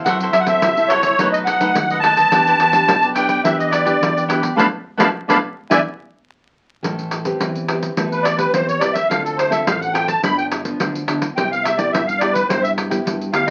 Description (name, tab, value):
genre	samba and choro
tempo	106 BPM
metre	4/4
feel	straight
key	A minor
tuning	A4 = 440 Hz
part	musette accordion	melody	0.0-13.5 s	A4 to B5	-18 LUFS	equal	none
part	cavaquinho	accompaniment	0.0-5.8 s	D#4 to E5	-26 LUFS	equal	none
part	nylon-string guitar	accompaniment	0.0-13.5 s	F#2 to B4	-27 LUFS	equal	none
part	fingered electric bass	bass	0.1-13.5 s	G1 to G2	-31 LUFS	equal	none
part	pandeiro	percussion	0.1-13.5 s	none	-24 LUFS	equal	none
room	wet small room reverb, RT60 0.5 s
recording	very old 78 rpm record, vinyl crackle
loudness	-18 LUFS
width	mono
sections	0.0-6.8 A section; 6.8-13.5 B section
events	band accent 4.6-6.8; accordion solo 6.8-13.5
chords	0.1 F#m7b5; 1.2 B7; 2.3 Em7; 4.6 Bm7b5; 5.7 E7(no3); 6.8 Am9; 9.1 Dm7; 10.2 G7; 11.4 Cmaj7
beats	| 0.06 0.62 1.19 1.75 | 2.32 2.88 3.44 4.01 | 4.57 5.14 5.70 6.27 | 6.83 7.40 7.96 8.53 | 9.10 9.66 10.23 10.79 | 11.36 11.93 12.49 13.06